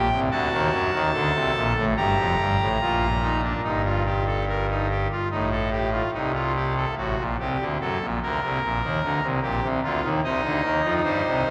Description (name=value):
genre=classical, baroque-style 3-part fugue for pipe organ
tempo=73 BPM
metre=4/4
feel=straight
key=G minor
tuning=A4 = 441 Hz
part: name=pipe organ, trumpet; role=solo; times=0.0-11.5 s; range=F1 to Bb5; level=-24 LUFS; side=equal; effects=none
room=wet cathedral reverb, RT60 4.1 s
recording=vinyl crackle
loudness=-24 LUFS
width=mono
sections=0.0-3.6 A section; 3.6-11.5 B section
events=none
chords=0.3 D7; 2.0 Gm; 3.6 Eb/G; 5.3 Am7b5; 7.0 D7/A; 8.6 Gm/Bb; 10.2 Cm